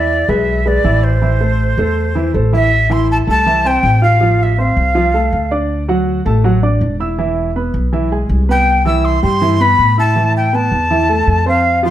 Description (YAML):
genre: latin, Cuban son and guajira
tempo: 161 BPM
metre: 4/4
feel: straight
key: A minor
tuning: A4 = 438 Hz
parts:
  - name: breathy reedy jazz flute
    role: melody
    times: 0.0-5.5, 8.5-11.9 s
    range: C5 to E6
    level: -15 LUFS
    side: equal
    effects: slapback echo, plate reverb
  - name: warm baby grand piano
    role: arpeggios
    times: 0.0-11.9 s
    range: E3 to F6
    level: -17 LUFS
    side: right 2 dB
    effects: none
  - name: upright bass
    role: bass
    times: 0.0-11.9 s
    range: E1 to A2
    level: -16 LUFS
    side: equal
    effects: none
room: light reverb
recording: none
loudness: -11 LUFS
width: side -12 dB against mid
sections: 0.0-2.7 A section; 2.7-11.9 B section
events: none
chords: 0.0 E7; 1.2 Am; 4.2 F6/A; 5.7 D; 7.2 E; 8.7 Cmaj7; 10.2 Amadd9